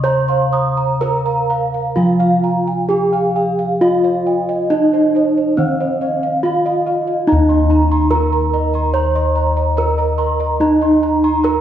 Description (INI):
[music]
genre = gamelan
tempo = 61-72 BPM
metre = 4/4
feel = straight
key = Eb slendro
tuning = A4 = 436 Hz
[part]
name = gamelan-type bronze metallophone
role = melody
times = 0.0-11.6 s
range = Db4-45c to Db5-45c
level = -17 LUFS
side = right 2 dB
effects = none
[part]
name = gamelan-type bronze metallophone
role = arpeggios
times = 0.0-11.6 s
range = Db5-45c to Eb6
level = -21 LUFS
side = right 3 dB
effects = none
[part]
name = gamelan-type bossed gongs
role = bass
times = 0.0-11.6 s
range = Eb2 to Db5-45c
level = -18 LUFS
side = left 1 dB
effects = none
[part]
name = gamelan-type bossed gongs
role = arpeggios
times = 0.1-11.6 s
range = Db5-45c to Db6-45c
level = -24 LUFS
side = left 2 dB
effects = none
[sound]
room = wet recital hall reverb, RT60 1.6 s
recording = heard from further back in the room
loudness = -13 LUFS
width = side -10 dB against mid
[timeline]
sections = 0.0-7.3 A section; 7.3-11.6 B section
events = none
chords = none